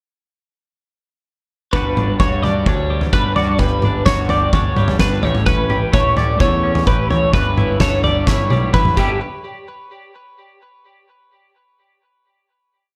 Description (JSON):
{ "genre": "math rock and midwest emo", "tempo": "128 BPM", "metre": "4/4", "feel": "straight", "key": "G lydian", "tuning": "A4 = 440 Hz", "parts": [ { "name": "twelve-string electric guitar", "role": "accompaniment", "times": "1.7-9.2 s", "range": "G2 to B4", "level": "-26 LUFS", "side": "equal", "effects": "subtle chorus" }, { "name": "twelve-string electric guitar", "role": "arpeggios", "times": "1.7-9.2 s", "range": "G4 to D5", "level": "-22 LUFS", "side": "equal", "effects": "phaser, delay" }, { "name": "fuzz picked electric bass", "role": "bass", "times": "1.7-9.2 s", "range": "G1 to A2", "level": "-23 LUFS", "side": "equal", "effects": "overdrive" }, { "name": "loose indie drum kit", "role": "drums", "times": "1.7-9.1 s", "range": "crash cymbal, kick drum, snare drum, toms", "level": "-20 LUFS", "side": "equal", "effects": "none" } ], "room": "moderate plate reverb, RT60 1.4 s, small room ambience", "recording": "dreamy mix soaked in reverb", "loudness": "-16 LUFS", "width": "mono", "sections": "1.7-9.2 A section; 9.2-11.1 final hit", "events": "drum fill 8.3-9.2", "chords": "1.7 Gmaj7; 5.2 A7; 7.3 G69; 9.2 N.C.", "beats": "| 1.73 2.19 2.66 3.13 | 3.59 4.06 4.53 5.00 | 5.47 5.93 6.40 6.87 | 7.34 7.81 8.28 8.74" }